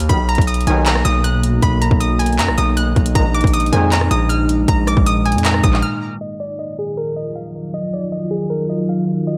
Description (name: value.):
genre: hip hop, trap.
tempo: 157 BPM.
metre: 4/4.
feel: half-time.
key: Eb harmonic minor.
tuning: A4 = 435 Hz.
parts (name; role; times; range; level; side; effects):
distorted 808-style bass; bass; 0.0-5.8 s; Bb1 to F#2; -20 LUFS; equal; distortion.
trap drum kit; drums; 0.0-9.4 s; handclaps, hi-hat, kick drum, rim click; -21 LUFS; equal; none.
hollow square pluck; melody; 0.1-9.4 s; Ab4 to F#6; -24 LUFS; equal; chorus, diffuse ambient delay.
deep dark ambient pad; sustained chords; 0.8-9.4 s; Bb2 to F4; -23 LUFS; equal; chorus, built-in reverb.
mellow brass ensemble; stabs; 0.1-4.0 s; D#2 to D#3; -25 LUFS; equal; none.
room: moderate plate reverb, RT60 1.8 s.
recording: dreamy mix soaked in reverb, low-pass filter.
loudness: -17 LUFS.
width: mono.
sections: 0.0-6.2 A section; 6.2-9.4 B section.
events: break 5.8-6.2; filter sweep 6.2-9.4.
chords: 0.1 Bmaj7; 3.2 Bb7sus4; 6.2 Ebmadd9.